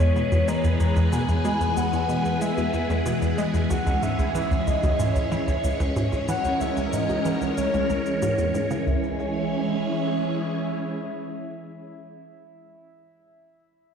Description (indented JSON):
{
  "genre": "ambient, sequencer-driven space music",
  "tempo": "93 BPM",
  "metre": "4/4",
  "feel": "straight",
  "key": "C# dorian",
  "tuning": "A4 = 439 Hz",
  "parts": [
    { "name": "soft octave-layered synth lead", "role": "melody", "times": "0.0-11.9 s", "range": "C#5 to A#5", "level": "-29 LUFS", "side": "equal", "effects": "chorus, phaser, ping-pong delay" },
    { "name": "phased string machine", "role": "sustained chords", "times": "0.0-11.9 s", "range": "E3 to C#5", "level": "-26 LUFS", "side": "left 1 dB", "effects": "ensemble chorus, phaser" },
    { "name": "hollow square pluck", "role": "riff", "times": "0.0-9.2 s", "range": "C#2 to G#3", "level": "-25 LUFS", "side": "equal", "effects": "chorus, phaser, ping-pong delay" },
    { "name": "cabasa and bongos", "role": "percussion", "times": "0.0-8.8 s", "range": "none", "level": "-40 LUFS", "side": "left 2 dB", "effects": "ping-pong delay" }
  ],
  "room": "wet lush hall reverb, RT60 2.7 s",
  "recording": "played on a big sound system in a bare room, large studio reverb",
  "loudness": "-22 LUFS",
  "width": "side -7 dB against mid",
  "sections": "0.0-8.9 A section; 8.9-11.4 B section",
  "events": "none",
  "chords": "0.0 E; 3.7 C#m",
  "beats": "0.48 | 1.13 1.77 2.42 3.06 | 3.71 4.35 5.00 5.64 | 6.29 6.93 7.58 8.22 | 8.87 9.51 10.16 10.80"
}